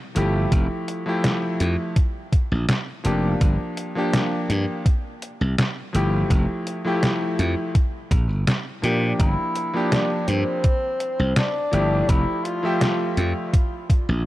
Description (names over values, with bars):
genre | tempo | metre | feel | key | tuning
vaporwave | 83 BPM | 4/4 | straight | unclear | A4 = 440 Hz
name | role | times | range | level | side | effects
clear electric grand piano | accompaniment | 0.1-13.5 s | F3 to E5 | -25 LUFS | equal | lush chorus, tape echo
glassy slap bass | bass | 0.2-14.2 s | F1 to Bb2 | -21 LUFS | equal | none
detuned 8-bit digital drum machine | drums | 0.2-14.1 s | hi-hat, snare drum | -24 LUFS | equal | overdrive
electronic kick drum | drums | 0.5-14.0 s | none | -19 LUFS | equal | overdrive
breathy tenor saxophone | melody | 9.2-13.5 s | C4 to F4 | -25 LUFS | left 1 dB | vintage 12-bit sampler grit, tape echo
room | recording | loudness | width
light reverb | cassette tape | -20 LUFS | side -16 dB against mid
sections
0.0-14.3 A section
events
none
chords
0.0 Csus4 (rootless); 0.5 Fmaj9; 2.0 Bb6; 3.4 Gm7; 4.9 Csus4 (rootless); 6.3 Fmaj9; 7.8 Gm7; 10.6 Csus24; 12.1 Fmaj9; 13.5 N.C.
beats
| 0.52 1.25 1.97 2.69 | 3.41 4.14 4.86 5.58 | 6.31 7.03 7.75 8.47 | 9.20 9.92 10.64 11.37 | 12.09 12.81 13.53